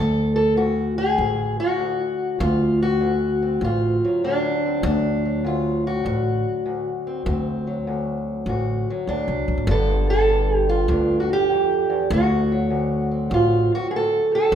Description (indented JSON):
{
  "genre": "acoustic country blues, solo or duo",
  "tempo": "99 BPM",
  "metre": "4/4",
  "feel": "swing 67% on 8ths",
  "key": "D mixolydian",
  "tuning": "A4 = 440 Hz",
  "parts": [
    { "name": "fingerpicked steel-string acoustic guitar", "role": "melody", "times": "0.0-14.6 s", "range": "D2 to A4", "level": "-21 LUFS", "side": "equal", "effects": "none" },
    { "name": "upright bass", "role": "bass", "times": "0.0-14.6 s", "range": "G1 to D2", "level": "-23 LUFS", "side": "equal", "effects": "none" }
  ],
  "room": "wet recital hall reverb, RT60 1.4 s",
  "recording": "minimal, uncompressed stereo recording",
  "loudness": "-19 LUFS",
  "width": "side -9 dB against mid",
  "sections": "0.0-14.6 A section",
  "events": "none",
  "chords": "0.0 D7; 9.7 G7; 12.1 D7",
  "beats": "0.58 1.19 1.80 | 2.41 3.02 3.62 4.23 | 4.84 5.44 6.05 6.66 | 7.26 7.87 8.48 9.08 | 9.69 10.29 10.90 11.50 | 12.11 12.71 13.32 13.92 | 14.53"
}